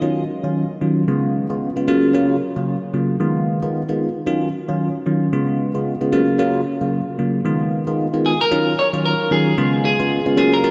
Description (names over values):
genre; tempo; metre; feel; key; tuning
afrobeats; 113 BPM; 4/4; swing 58% on 16ths; Eb minor; A4 = 441 Hz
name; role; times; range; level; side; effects
bell-like tine electric piano; accompaniment; 0.0-10.7 s; Db3 to F4; -20 LUFS; equal; phaser
clean electric guitar; melody; 8.3-10.7 s; Ab4 to Db5; -22 LUFS; equal; lush chorus, tape echo
room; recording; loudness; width
wet lush hall reverb, RT60 2.9 s; dreamy mix soaked in reverb; -19 LUFS; mono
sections
0.0-8.5 A section; 8.5-10.7 B section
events
none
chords
0.0 Ebm9; 1.1 Db7; 1.9 Gbmaj7; 3.2 Fm7b5; 4.3 Ebm9; 5.3 Db7; 6.1 Gbmaj7; 7.5 Fm7b5; 8.5 Ebm9; 9.6 Db7